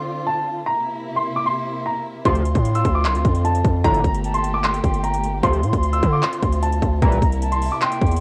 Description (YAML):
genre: hip hop, trap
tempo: 151 BPM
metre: 4/4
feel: half-time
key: D minor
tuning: A4 = 440 Hz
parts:
  - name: dark concert grand piano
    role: melody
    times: 0.0-8.2 s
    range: A5 to E6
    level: -26 LUFS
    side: equal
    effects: cassette tape
  - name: warm symphonic string section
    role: sustained chords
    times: 0.0-8.2 s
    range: C3 to G4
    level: -33 LUFS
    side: equal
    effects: none
  - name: mellow jazz flute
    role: second line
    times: 2.3-8.2 s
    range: G5 to C6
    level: -31 LUFS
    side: equal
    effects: analog delay
  - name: sync-sweep polysynth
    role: stabs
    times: 2.3-7.2 s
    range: Bb1 to F3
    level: -26 LUFS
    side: equal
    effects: chorus
  - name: distorted 808-style bass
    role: bass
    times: 2.3-8.2 s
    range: G1 to D3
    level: -23 LUFS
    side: equal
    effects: distortion
  - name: trap drum kit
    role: drums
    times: 2.3-8.2 s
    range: handclaps, hi-hat, kick drum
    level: -24 LUFS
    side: equal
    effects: overdrive, cassette tape
room: light reverb, small room ambience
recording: home recording on cassette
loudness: -20 LUFS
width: mono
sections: 0.0-8.2 A section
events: none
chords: 0.0 Dm7; 0.7 C7; 2.3 Dm7; 3.8 Gmadd9; 5.4 Dm7; 7.0 C7